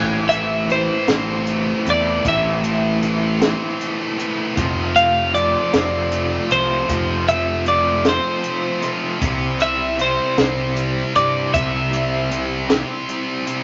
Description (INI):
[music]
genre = indie rock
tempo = 52 BPM (dotted quarters)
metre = 6/8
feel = straight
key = A minor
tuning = A4 = 439 Hz
[part]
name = raw garage guitar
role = riff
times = 0.0-13.6 s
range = A2 to F4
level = -28 LUFS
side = equal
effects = overdrive, tremolo
[part]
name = scooped high-gain guitar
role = riff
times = 0.0-13.6 s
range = A2 to C4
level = -26 LUFS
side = equal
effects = distortion
[part]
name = fuzz picked electric bass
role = bass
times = 0.0-12.8 s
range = F1 to G2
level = -27 LUFS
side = equal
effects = overdrive
[part]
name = twelve-string electric guitar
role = melody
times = 0.3-13.0 s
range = C5 to F5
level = -22 LUFS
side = equal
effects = none
[part]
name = compact cocktail drum kit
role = drums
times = 0.3-13.6 s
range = hi-hat, kick drum, snare drum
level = -24 LUFS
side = equal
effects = none
[sound]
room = wet studio reverb, RT60 1.0 s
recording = vinyl crackle, nothing above 7.5 kHz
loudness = -19 LUFS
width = mono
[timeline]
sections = 0.0-13.6 A section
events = none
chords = 0.0 Am; 4.6 F; 9.2 C